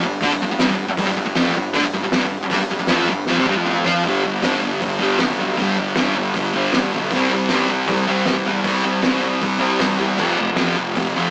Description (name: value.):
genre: garage rock duo or trio.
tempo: 156 BPM.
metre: 4/4.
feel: straight.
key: unclear.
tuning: A4 = 436 Hz.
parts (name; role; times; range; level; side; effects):
thick fuzz guitar; riff; 0.0-11.3 s; F2 to F4; -21 LUFS; equal; distortion.
fuzz picked electric bass; bass; 0.0-11.3 s; F1 to F2; -29 LUFS; equal; overdrive.
cloth-damped thuddy drum kit; drums; 0.2-11.0 s; crash cymbal, hi-hat, kick drum, snare drum, toms; -26 LUFS; equal; none.
room: light reverb.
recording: rough rehearsal-room recording, small speaker sound.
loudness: -19 LUFS.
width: mono.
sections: 0.0-4.0 A section; 4.0-11.3 B section.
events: drum fill 3.3-4.0.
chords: 0.0 G5; 7.1 C5; 10.2 F5.